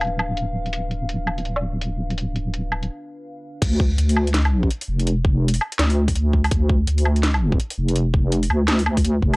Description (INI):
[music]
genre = half-time drum and bass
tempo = 166 BPM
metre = 4/4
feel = swing 60% on 16ths, half-time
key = D dorian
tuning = A4 = 438 Hz
[part]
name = dark analog pad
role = sustained chords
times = 0.0-3.6 s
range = D4 to F5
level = -32 LUFS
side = left 1 dB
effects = chorus, phaser, vintage 12-bit sampler grit, sidechain pumping
[part]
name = deep soft wobble bass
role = bass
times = 0.0-9.4 s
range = D1 to D2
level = -20 LUFS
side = equal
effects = chorus
[part]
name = drum and bass drum kit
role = drums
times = 0.0-9.4 s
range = crash cymbal, hi-hat, snare drum, woodblock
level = -25 LUFS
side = equal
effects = low-pass filter on hats, low-pass filter on perc, low-pass filter on cymbals, low-pass filter on snare, low-pass filter on room
[part]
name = electronic kick drum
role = drums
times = 3.6-9.3 s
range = none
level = -20 LUFS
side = equal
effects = none
[sound]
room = little or no reverb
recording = dry, gritty hardware recording, cassette tape, low-pass filter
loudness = -18 LUFS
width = side -28 dB against mid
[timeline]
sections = 0.0-3.6 A section; 3.6-9.4 B section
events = break 2.9-3.6; drop 3.6-9.4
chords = 0.0 D5; 3.6 Dm/F